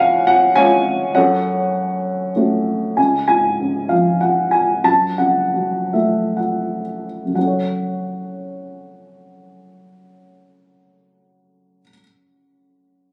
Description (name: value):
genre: classical, lyrical solo piano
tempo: 57-105 BPM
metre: 3/4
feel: rubato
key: F# minor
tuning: A4 = 440 Hz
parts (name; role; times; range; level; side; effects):
- dark upright piano; solo; 0.0-13.1 s; C#2 to A5; -18 LUFS; equal; none
room: light reverb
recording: recorded on a phone in the room, studio ambience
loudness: -18 LUFS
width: mono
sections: 0.0-3.0 A section; 3.0-7.4 B section; 7.4-13.1 C section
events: slowing down 3.0-7.4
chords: 0.0 C#; 1.2 F#m; 3.0 C#; 4.8 F#m